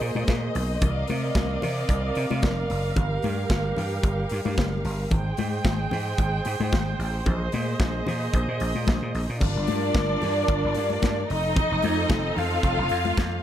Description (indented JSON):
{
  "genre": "disco",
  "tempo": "112 BPM",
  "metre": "4/4",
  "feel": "straight",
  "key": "unclear",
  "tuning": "A4 = 443 Hz",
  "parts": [
    { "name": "clear studio string section", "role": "sustained chords", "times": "0.0-13.4 s", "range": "F3 to G5", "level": "-29 LUFS", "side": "right 2 dB", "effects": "none" },
    { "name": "vintage slap bass", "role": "bass", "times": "0.0-13.4 s", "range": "F1 to C3", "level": "-28 LUFS", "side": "equal", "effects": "none" },
    { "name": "modern studio drum kit", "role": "drums", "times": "0.0-13.3 s", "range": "crash cymbal, hi-hat, kick drum, snare drum", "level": "-28 LUFS", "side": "equal", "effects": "none" },
    { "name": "congas", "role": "percussion", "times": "0.2-13.3 s", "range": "none", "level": "-32 LUFS", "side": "left 6 dB", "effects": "none" },
    { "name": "clear studio string section", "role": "second line", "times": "9.4-13.4 s", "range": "D4 to F5", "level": "-25 LUFS", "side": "left 1 dB", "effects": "none" }
  ],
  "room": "small room ambience",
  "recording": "none",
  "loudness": "-22 LUFS",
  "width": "side -11 dB against mid",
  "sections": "0.0-9.4 A section; 9.4-13.4 B section",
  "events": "none",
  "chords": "0.0 Bb9sus4; 0.8 Cm11; 3.0 Gm7; 5.1 Abmaj7; 7.3 Bb9sus4; 9.4 Gm7; 11.3 F7"
}